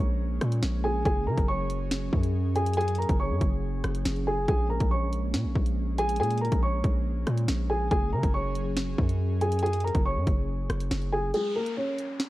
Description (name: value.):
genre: hip hop, drill.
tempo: 140 BPM.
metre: 4/4.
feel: half-time.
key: unclear.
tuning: A4 = 437 Hz.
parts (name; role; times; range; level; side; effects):
dark baby grand piano; melody; 0.0-12.3 s; Ab3 to Db6; -30 LUFS; equal; low-pass filter.
airy breathy pad; sustained chords; 0.0-11.3 s; Gb3 to Ab4; -36 LUFS; equal; chorus.
distorted 808-style bass; bass; 0.0-11.3 s; Gb1 to Db3; -28 LUFS; equal; distortion.
drill drum kit; drums; 0.4-12.3 s; hi-hat, kick drum, rim click, snare drum; -28 LUFS; equal; none.
downlifter; sound effects; 11.3-12.3 s; none; -40 LUFS; left 1 dB; none.
room: digital ambience.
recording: worn, warbling old tape, cassette tape, warbly pitch drift.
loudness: -24 LUFS.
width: side -17 dB against mid.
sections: 0.0-11.3 A section.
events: kick muted 11.3-12.3.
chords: 0.0 Bbm7; 1.1 Gbsus2; 4.5 Bbm7; 7.9 Gbsus2; 11.3 Absus24.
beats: 0.20 0.63 | 1.05 1.48 1.91 2.34 | 2.77 3.20 3.63 4.05 | 4.48 4.91 5.34 5.77 | 6.20 6.63 7.05 7.48 | 7.91 8.34 8.77 9.20 | 9.63 10.05 10.48 10.91 | 11.34 11.77 12.20.